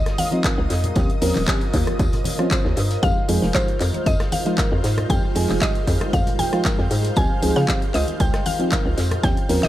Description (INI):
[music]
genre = deep house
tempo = 116 BPM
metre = 4/4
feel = swing 53% on 16ths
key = unclear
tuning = A4 = 444 Hz
[part]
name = mallet-like synth pluck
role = melody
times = 0.0-9.7 s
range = C5 to Ab5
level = -27 LUFS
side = equal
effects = chorus, dub echo
[part]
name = soft string machine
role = sustained chords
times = 0.0-9.7 s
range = G3 to C6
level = -32 LUFS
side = equal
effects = phaser, ensemble chorus, sidechain pumping
[part]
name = hollow knocking FM bass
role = bass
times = 0.0-9.7 s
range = Eb1 to Db3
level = -22 LUFS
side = equal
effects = sidechain pumping
[part]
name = analog string pad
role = texture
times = 0.0-9.7 s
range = Eb5 to G6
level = -36 LUFS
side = equal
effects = ensemble chorus
[part]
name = deep dark ambient pad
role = texture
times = 0.0-9.7 s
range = F4 to F5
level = -32 LUFS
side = right 3 dB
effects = chorus, built-in reverb, sidechain pumping
[part]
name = house drum kit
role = drums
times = 0.1-9.7 s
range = handclaps, hi-hat, rim click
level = -28 LUFS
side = left 1 dB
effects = dub echo
[part]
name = vintage drum kit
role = drums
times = 0.1-9.6 s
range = hi-hat, snare drum, tambourine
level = -38 LUFS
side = equal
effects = sidechain pumping on hats, high-pass filter on hats, high-pass filter on snare, sidechain pumping on perc, high-pass filter on perc, high-pass filter on room, dub echo
[part]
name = congas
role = percussion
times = 0.2-9.2 s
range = none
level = -31 LUFS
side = left 2 dB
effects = none
[part]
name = mellow FM electric piano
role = stabs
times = 0.3-9.7 s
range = F3 to C5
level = -25 LUFS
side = equal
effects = chorus, sidechain pumping, dub echo
[part]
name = electronic kick drum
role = drums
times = 0.4-9.3 s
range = none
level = -22 LUFS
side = equal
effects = none
[sound]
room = light reverb, small room ambience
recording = echo-heavy mix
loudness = -18 LUFS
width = side -14 dB against mid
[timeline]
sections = 0.0-9.7 A section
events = none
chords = 0.0 Dbmaj9#11 (rootless); 1.0 Eb13; 3.0 Fm9; 7.2 Dbmaj9#11